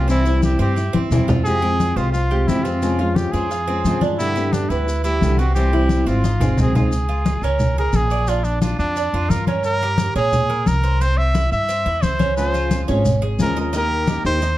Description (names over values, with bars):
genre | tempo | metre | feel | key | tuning
latin, Cuban son and guajira | 176 BPM | 4/4 | straight | F harmonic minor | A4 = 440 Hz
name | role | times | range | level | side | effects
clear trumpet | melody | 0.0-14.6 s | D4 to E5 | -23 LUFS | equal | none
fingerpicked steel-string acoustic guitar | accompaniment | 0.0-6.9, 12.4-14.5 s | B2 to Ab4 | -22 LUFS | left 2 dB | none
Cuban tres | arpeggios | 0.0-14.6 s | C4 to G5 | -26 LUFS | right 4 dB | tape echo
upright bass | bass | 0.0-14.6 s | Ab1 to Bb2 | -21 LUFS | equal | none
congas | percussion | 0.1-14.6 s | none | -22 LUFS | left 1 dB | none
maracas | percussion | 0.1-14.6 s | none | -38 LUFS | left 3 dB | none
room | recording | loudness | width
light reverb | dark, warm production | -16 LUFS | side -15 dB against mid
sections
0.0-6.9 A section; 6.9-14.6 B section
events
drum fill 0.9-1.5, 6.2-6.9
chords
0.1 C; 1.5 Fmadd9; 2.8 Dbmaj7/F; 4.2 G; 5.6 C; 6.2 Ab7; 6.9 Db; 8.3 Bb; 9.6 Gdim; 11.0 C; 12.4 Db; 13.7 Eb